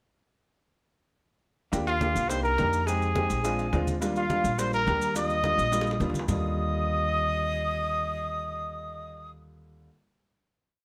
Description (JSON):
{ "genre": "Afro-Cuban jazz", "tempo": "211 BPM", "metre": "4/4", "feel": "straight", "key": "Eb major", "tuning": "A4 = 440 Hz", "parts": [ { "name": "warm baby grand piano", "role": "accompaniment", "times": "1.7-9.9 s", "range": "D3 to F5", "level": "-34 LUFS", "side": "equal", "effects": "none" }, { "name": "upright bass", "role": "bass", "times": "1.7-9.9 s", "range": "Bb1 to F2", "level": "-34 LUFS", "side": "equal", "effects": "none" }, { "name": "bongos", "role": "percussion", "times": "1.7-6.4 s", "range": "none", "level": "-42 LUFS", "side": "equal", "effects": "none" }, { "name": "congas", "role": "percussion", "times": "1.7-6.4 s", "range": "none", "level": "-36 LUFS", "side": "equal", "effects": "none" }, { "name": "maracas", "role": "percussion", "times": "1.7-6.4 s", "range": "none", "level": "-44 LUFS", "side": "equal", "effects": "none" }, { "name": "warm trumpet", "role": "melody", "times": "1.9-9.3 s", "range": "F4 to Eb5", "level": "-31 LUFS", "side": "equal", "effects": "none" }, { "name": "breathy bright jazz flute", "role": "second line", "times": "1.9-9.3 s", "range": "F5 to Eb6", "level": "-37 LUFS", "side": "equal", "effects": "none" } ], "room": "moderate studio reverb, RT60 0.8 s", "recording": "none", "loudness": "-27 LUFS", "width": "mono", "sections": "1.7-6.3 A section; 6.3-8.5 final chord", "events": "grand piano fill 3.4-4.0; drum fill 5.7-6.3", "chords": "1.7 Cm9; 2.9 Fm9; 3.4 Bb9; 4.0 Ebmaj9", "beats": "| 1.73 2.01 2.30 2.59 | 2.87 3.16 3.44 3.73 | 4.02 4.30 4.59 4.87 | 5.16 5.44 5.72 6.01 | 6.29 6.57 6.85 7.13 | 7.42 7.70 7.98 8.26" }